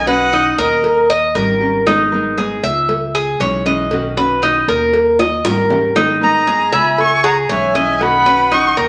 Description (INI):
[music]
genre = latin, Cuban son and guajira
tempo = 117 BPM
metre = 4/4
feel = straight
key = G# minor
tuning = A4 = 440 Hz
[part]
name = warm erhu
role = melody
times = 0.0-1.1, 6.2-8.9 s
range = D#5 to C#6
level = -18 LUFS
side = equal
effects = none
[part]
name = bright reedy jazz flute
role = second line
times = 0.0-1.1, 6.2-8.9 s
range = A#4 to G#5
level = -22 LUFS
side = equal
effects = none
[part]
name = nylon-string guitar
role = accompaniment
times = 0.0-8.9 s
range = B2 to A#4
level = -24 LUFS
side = equal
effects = none
[part]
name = Cuban tres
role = arpeggios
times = 0.0-8.9 s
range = D#4 to E5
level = -17 LUFS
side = equal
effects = none
[part]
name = upright bass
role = bass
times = 0.0-8.9 s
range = G#1 to D#2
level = -28 LUFS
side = equal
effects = none
[part]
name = cowbell and bongos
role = percussion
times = 0.3-8.8 s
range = none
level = -26 LUFS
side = equal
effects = none
[sound]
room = wet studio reverb, RT60 0.8 s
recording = none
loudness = -15 LUFS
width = mono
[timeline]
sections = 0.0-8.9 A section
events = drum fill 5.2-6.0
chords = 0.0 Badd9; 0.8 D#7; 1.9 G#madd9; 2.9 C#m; 3.9 Badd9; 4.9 D#7; 6.0 G#madd9; 7.0 C#m; 8.0 Badd9